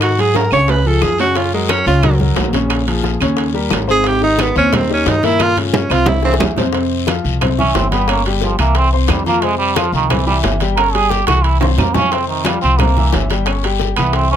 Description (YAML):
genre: Afro-Cuban jazz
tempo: 178 BPM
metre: 4/4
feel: straight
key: unclear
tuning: A4 = 440 Hz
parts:
  - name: warm tenor saxophone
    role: melody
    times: 0.0-6.3 s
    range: Ab3 to Db5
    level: -15 LUFS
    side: right 2 dB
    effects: none
  - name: warm upright piano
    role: accompaniment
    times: 0.0-14.4 s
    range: Bb2 to Db6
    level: -20 LUFS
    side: left 3 dB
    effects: none
  - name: upright bass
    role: bass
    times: 0.0-14.4 s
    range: G1 to Ab2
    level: -18 LUFS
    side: equal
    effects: none
  - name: bongos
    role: percussion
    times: 0.0-14.3 s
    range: none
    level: -25 LUFS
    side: left 10 dB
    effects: none
  - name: claves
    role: percussion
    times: 0.0-14.1 s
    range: none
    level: -27 LUFS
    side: right 8 dB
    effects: none
  - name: congas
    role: percussion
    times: 0.0-14.4 s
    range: none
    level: -22 LUFS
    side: equal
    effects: none
  - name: guiro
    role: percussion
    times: 0.0-14.4 s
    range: none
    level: -28 LUFS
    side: left 9 dB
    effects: none
  - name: timbales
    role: percussion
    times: 0.0-14.3 s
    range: none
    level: -23 LUFS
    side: right 8 dB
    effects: none
  - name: trombone with metal mute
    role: second line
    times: 7.6-14.4 s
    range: Db3 to Bb4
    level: -17 LUFS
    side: right 5 dB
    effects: none
room: little or no reverb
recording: close, detailed microphones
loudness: -12 LUFS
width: side -9 dB against mid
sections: 0.0-6.7 A section; 6.7-14.4 A section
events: tenor saxophone solo 0.0-6.7; drum fill 0.4-1.4, 5.4-6.7, 11.3-12.1; trombone solo 6.7-14.4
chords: 0.0 Ab7sus4; 0.7 Db; 1.4 Gb; 2.7 Bbm7; 3.4 Eb6; 4.1 Abmaj9; 5.4 Gm7b5; 6.1 Caug; 6.7 F5; 7.4 C; 8.1 Gdim7; 8.8 C; 9.4 F5; 10.1 C; 10.8 Gdim7; 11.4 C; 12.1 F5; 12.8 C7; 13.5 Em6/G